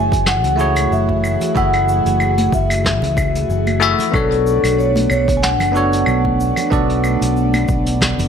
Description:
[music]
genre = sunset chillout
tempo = 93 BPM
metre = 4/4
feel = swing 55% on 16ths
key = F# minor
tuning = A4 = 442 Hz
[part]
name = vibraphone with soft mallets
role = melody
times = 0.0-8.3 s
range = A4 to G#5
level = -20 LUFS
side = left 1 dB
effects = digital delay
[part]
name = bell-like tine electric piano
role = accompaniment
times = 0.0-8.3 s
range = A3 to E5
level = -21 LUFS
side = moving between left 7 dB and right 6 dB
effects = auto-pan, digital delay
[part]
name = airy breathy pad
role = sustained chords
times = 0.0-8.3 s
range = E3 to G#4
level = -23 LUFS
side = left 1 dB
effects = chorus
[part]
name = fingered electric bass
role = bass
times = 0.0-8.3 s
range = F#1 to C#2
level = -19 LUFS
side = equal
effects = none
[part]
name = electronic kick drum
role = drums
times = 0.1-8.1 s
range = none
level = -22 LUFS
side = equal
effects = none
[part]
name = soft brush drum kit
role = drums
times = 0.1-8.3 s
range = claves, hi-hat, shaker, snare drum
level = -22 LUFS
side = equal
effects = none
[part]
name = congas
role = percussion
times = 0.4-8.3 s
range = none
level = -27 LUFS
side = right 3 dB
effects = none
[sound]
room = light reverb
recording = bright 1980s-style digital production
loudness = -14 LUFS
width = side -7 dB against mid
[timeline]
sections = 0.0-8.3 A section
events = none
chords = 0.0 F#m9; 4.1 Bm9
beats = 0.27 0.91 | 1.56 2.20 2.85 3.49 | 4.14 4.78 5.43 6.07 | 6.72 7.36 8.01

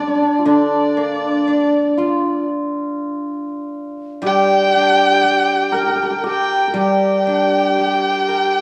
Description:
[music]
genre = chinese traditional, Chinese chamber ensemble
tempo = 60 BPM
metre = 4/4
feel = rubato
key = G yu mode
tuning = A4 = 438 Hz
[part]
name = dark erhu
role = melody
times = 0.0-8.6 s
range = D5 to G5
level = -21 LUFS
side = equal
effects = none
[part]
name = bright reedy xiao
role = second line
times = 0.0-8.6 s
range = D4 to Bb4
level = -24 LUFS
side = equal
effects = none
[part]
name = hammered dulcimer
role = second line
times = 0.0-8.6 s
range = D4 to Bb4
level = -23 LUFS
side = equal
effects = none
[part]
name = guzheng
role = accompaniment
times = 0.5-8.6 s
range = D3 to Bb4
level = -22 LUFS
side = equal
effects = none
[sound]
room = wet small room reverb, RT60 0.6 s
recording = studio reverb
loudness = -17 LUFS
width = mono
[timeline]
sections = 0.0-8.6 A section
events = none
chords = none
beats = | 0.72 1.72 2.73 3.73 | 4.73 5.73 6.75 7.77

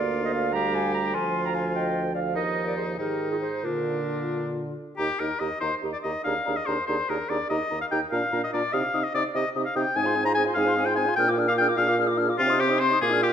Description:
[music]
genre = quick classical-period movement for wind quintet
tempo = 97 BPM (dotted quarters)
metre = 6/8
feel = rubato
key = Eb major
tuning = A4 = 442 Hz
[part]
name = clear oboe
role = second line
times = 0.0-13.3 s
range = D4 to Bb5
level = -26 LUFS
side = left 3 dB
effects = none
[part]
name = clear French horn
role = accompaniment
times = 0.0-13.3 s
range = D3 to F4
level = -32 LUFS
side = equal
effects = none
[part]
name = warm clarinet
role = accompaniment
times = 0.0-13.3 s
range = G4 to C6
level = -32 LUFS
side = right 8 dB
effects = none
[part]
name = dark bassoon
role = bass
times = 0.0-13.3 s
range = D2 to C3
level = -29 LUFS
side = right 2 dB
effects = none
[part]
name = hollow concert flute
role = melody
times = 0.2-13.3 s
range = F4 to F6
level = -32 LUFS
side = left 8 dB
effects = none
[sound]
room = wet recital hall reverb, RT60 1.6 s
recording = none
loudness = -23 LUFS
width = side -8 dB against mid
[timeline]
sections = 0.0-5.0 A section; 5.0-13.3 B section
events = none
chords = 0.0 Bb/D; 1.1 Fm13/D; 2.4 Eb5; 3.0 Ab5; 3.6 Bb; 5.0 Eb; 6.3 Bb7/Eb; 7.5 Eb; 8.1 Bb; 8.7 Cm; 10.0 Fm/Ab; 11.2 Bb7; 12.4 Cm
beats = 0.54 | 1.14 1.75 | 2.36 2.98 | 3.65 4.32 | 4.98 5.62 | 6.25 6.88 | 7.50 8.12 | 8.74 9.35 | 9.96 10.57 | 11.17 11.78 | 12.39 13.02

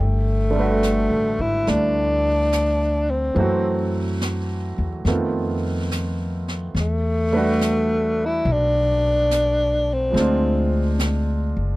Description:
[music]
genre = jazz ballad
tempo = 71 BPM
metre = 4/4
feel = swing 68% on 8ths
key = G major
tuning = A4 = 442 Hz
[part]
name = breathy tenor saxophone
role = melody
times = 0.0-11.0 s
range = A3 to E4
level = -21 LUFS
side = left 1 dB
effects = none
[part]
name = clear grand piano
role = accompaniment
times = 0.0-11.8 s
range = D3 to G5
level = -25 LUFS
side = right 3 dB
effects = none
[part]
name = upright bass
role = bass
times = 0.0-11.8 s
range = F#1 to F#2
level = -23 LUFS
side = left 1 dB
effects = none
[part]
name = jazz brush drum kit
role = drums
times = 0.8-11.8 s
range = brushed snare drum, hi-hat, snare drum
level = -32 LUFS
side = equal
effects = none
[sound]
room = little or no reverb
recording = dry, close 1970s-style studio recording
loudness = -18 LUFS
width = side -19 dB against mid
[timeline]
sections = 0.0-11.8 A section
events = none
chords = 0.0 Gmaj9; 3.4 F#m7b5; 5.1 F7#11; 6.7 Em11; 10.1 Dm7b5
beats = 0.83 1.67 2.52 | 3.36 4.21 5.06 5.90 | 6.75 7.59 8.44 9.29 | 10.13 10.98

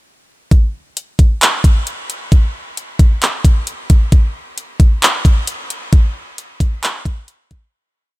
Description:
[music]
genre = hip hop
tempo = 133 BPM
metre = 4/4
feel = half-time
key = none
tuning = none
[part]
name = trap drum kit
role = drums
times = 0.5-7.6 s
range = handclaps, hi-hat, kick drum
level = -12 LUFS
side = equal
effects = none
[sound]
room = digital ambience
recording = none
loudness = -12 LUFS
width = side -20 dB against mid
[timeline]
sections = 0.5-7.7 verse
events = fade-out 5.9-7.7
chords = none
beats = | 0.51 0.96 1.42 1.87 | 2.32 2.77 3.22 3.67 | 4.12 4.57 5.03 5.48 | 5.93 6.38 6.83 7.28

